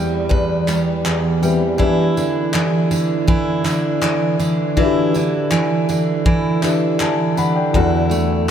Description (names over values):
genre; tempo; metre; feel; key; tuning
acoustic pop; 81 BPM; 4/4; straight; E minor; A4 = 442 Hz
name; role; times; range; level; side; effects
felt-muted upright piano; accompaniment; 0.0-8.5 s; E3 to B5; -23 LUFS; left 7 dB; none
picked steel-string acoustic guitar; accompaniment; 0.0-8.5 s; E2 to B4; -16 LUFS; right 2 dB; none
modern studio drum kit; drums; 0.3-8.3 s; handclaps, kick drum, tambourine; -24 LUFS; left 1 dB; none
room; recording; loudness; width
wet cathedral reverb, RT60 7.2 s; in a vast, echoing space; -15 LUFS; side -8 dB against mid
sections
0.0-8.5 A section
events
none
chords
0.0 Cmaj7/E; 1.8 Em7; 7.7 D/E